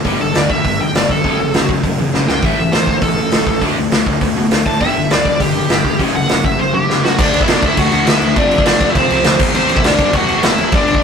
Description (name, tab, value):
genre	punk rock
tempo	203 BPM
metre	4/4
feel	straight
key	unclear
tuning	A4 = 440 Hz
part	distorted electric guitar	riff	0.0-11.0 s	F2 to D4	-20 LUFS	left 5 dB	distortion
part	distorted electric guitar	riff	0.0-7.2 s	F#2 to D4	-24 LUFS	right 4 dB	distortion
part	raw garage drum kit	drums	0.0-11.0 s	crash cymbal, hi-hat, kick drum, snare drum	-15 LUFS	right 1 dB	none
part	fuzz picked electric bass	bass	0.1-10.9 s	E1 to B2	-22 LUFS	equal	overdrive
part	high-gain lead guitar	melody	0.2-11.0 s	C4 to A5	-17 LUFS	equal	distortion
room	light reverb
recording	rough rehearsal-room recording, tube saturation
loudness	-12 LUFS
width	side -6 dB against mid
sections	0.0-7.2 A section; 7.2-11.0 B section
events	lead electric guitar solo 0.0-7.2; drum fill 2.1, 6.9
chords	0.1 G5; 1.2 F#m; 2.4 A5; 3.6 D5; 4.8 G5; 6.0 F#5; 7.2 D; 8.4 F5; 9.4 C/E